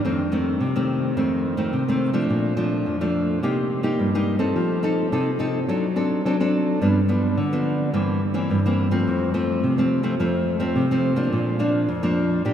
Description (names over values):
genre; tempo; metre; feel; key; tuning
samba; 106 BPM; 4/4; straight; Bb major; A4 = 441 Hz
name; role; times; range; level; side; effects
nylon-string guitar; solo; 0.0-12.5 s; F2 to A4; -20 LUFS; equal; slapback echo
room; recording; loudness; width
wet huge ambient reverb, RT60 7.3 s; in a vast, echoing space; -20 LUFS; side -9 dB against mid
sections
0.0-11.3 A section; 11.3-12.5 B section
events
none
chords
0.0 F7; 2.3 Bbmaj7; 3.4 Cm7; 4.6 F7; 5.7 D7/F#; 6.8 G7; 7.9 C7/G; 9.1 F; 11.3 Bb